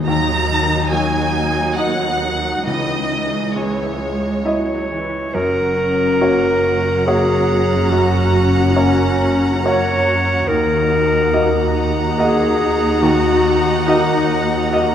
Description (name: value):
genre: cinematic, emotional film score for orchestra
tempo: 70 BPM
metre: 3/4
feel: rubato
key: unclear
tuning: A4 = 438 Hz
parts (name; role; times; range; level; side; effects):
- bright baby grand piano; accompaniment; 0.0-14.9 s; C#2 to D#5; -21 LUFS; right 1 dB; none
- warm symphonic viola section; accompaniment; 0.0-14.9 s; E3 to F#4; -24 LUFS; right 1 dB; none
- concert harp; arpeggios; 0.0-14.9 s; F#2 to F#5; -24 LUFS; left 7 dB; none
- warm symphonic cello section; bass; 0.0-14.9 s; C#2 to F#2; -23 LUFS; right 2 dB; none
- rich studio violin section; melody; 0.1-4.9 s; C#5 to A#5; -21 LUFS; equal; none
- bright clarinet; second line; 4.5-14.7 s; C#4 to C#5; -18 LUFS; equal; none
- warm studio violin section; second line; 5.3-14.9 s; F#5 to A#5; -24 LUFS; left 1 dB; none
- warm symphonic double bass section; bass; 5.3-14.9 s; F#1 to D#2; -24 LUFS; right 2 dB; none
room: moderate scoring stage reverb, RT60 2.0 s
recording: none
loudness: -14 LUFS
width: side -9 dB against mid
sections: 0.0-5.3 A section; 5.3-14.9 B section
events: none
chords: 0.1 D#m; 2.7 C#madd9; 5.3 F#; 10.5 D#m